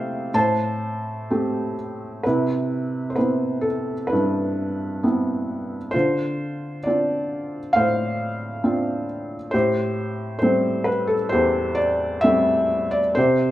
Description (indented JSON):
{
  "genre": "classical, lyrical solo piano",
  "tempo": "66 BPM",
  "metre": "4/4",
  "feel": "rubato",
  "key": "C major",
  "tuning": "A4 = 435 Hz",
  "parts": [
    { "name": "felt-muted upright piano", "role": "solo", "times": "0.0-13.5 s", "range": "E2 to A5", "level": "-20 LUFS", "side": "equal", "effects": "none" }
  ],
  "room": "moderate recital hall reverb, RT60 1.5 s",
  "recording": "minimal, uncompressed stereo recording",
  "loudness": "-20 LUFS",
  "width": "side -14 dB against mid",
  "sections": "0.0-2.2 A section; 2.2-13.5 B section",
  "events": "none",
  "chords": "0.3 Am7; 2.2 Cmaj7; 5.9 Dm7; 9.5 Am7"
}